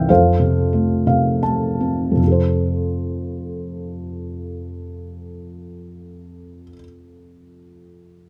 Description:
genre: classical, lyrical solo piano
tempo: 72-100 BPM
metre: 3/4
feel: rubato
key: F major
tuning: A4 = 440 Hz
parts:
  - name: felt-muted upright piano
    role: solo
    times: 0.0-8.3 s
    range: C2 to A5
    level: -20 LUFS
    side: equal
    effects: none
room: moderate recital hall reverb, RT60 1.4 s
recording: close, detailed microphones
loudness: -19 LUFS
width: mono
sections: 0.0-2.2 A section; 2.2-7.1 B section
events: slowing down 0.0-2.2; felt piano fill 0.7-2.2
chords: 0.1 F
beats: | 0.10 0.73 1.42 | 2.21 3.03 3.82 | 4.61 5.41 6.23

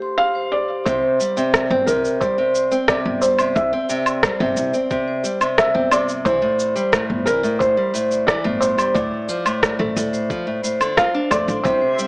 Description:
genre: folktronica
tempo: 89 BPM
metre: 4/4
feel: straight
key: C mixolydian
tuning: A4 = 440 Hz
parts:
  - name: vibraphone with medium hard mallets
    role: second line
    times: 0.0-12.1 s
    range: G4 to C6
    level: -26 LUFS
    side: left 1 dB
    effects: digital delay
  - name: felt-muted upright piano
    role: melody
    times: 0.2-12.1 s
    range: Bb4 to F5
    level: -19 LUFS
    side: equal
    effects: vintage 12-bit sampler grit
  - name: nylon-string guitar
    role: arpeggios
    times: 0.9-12.1 s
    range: A2 to F4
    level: -23 LUFS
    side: equal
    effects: digital delay
  - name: upright bass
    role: bass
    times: 0.9-11.8 s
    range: G1 to F2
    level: -25 LUFS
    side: equal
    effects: none
  - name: electronic kick drum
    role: drums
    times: 0.9-11.8 s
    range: none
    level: -30 LUFS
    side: equal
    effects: none
  - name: electronic shaker, rim click and woodblock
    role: drums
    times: 0.9-12.1 s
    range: none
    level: -20 LUFS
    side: equal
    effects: none
  - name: dark string quartet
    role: sustained chords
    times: 11.6-12.1 s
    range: C3 to E5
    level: -35 LUFS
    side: equal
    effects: none
  - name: twinkling granular texture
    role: texture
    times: 11.9-12.1 s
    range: C6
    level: -33 LUFS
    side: left 1 dB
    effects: built-in reverb
room: light reverb, small room ambience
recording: small speaker sound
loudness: -16 LUFS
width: side -26 dB against mid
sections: 0.9-12.1 A section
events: break 0.0-0.9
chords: 0.0 G7sus4; 0.9 C; 6.3 Am7; 9.0 Dm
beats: 0.19 | 0.86 1.53 2.21 2.88 | 3.56 4.23 4.91 5.58 | 6.25 6.93 7.60 8.28 | 8.95 9.62 10.30 10.97 | 11.65

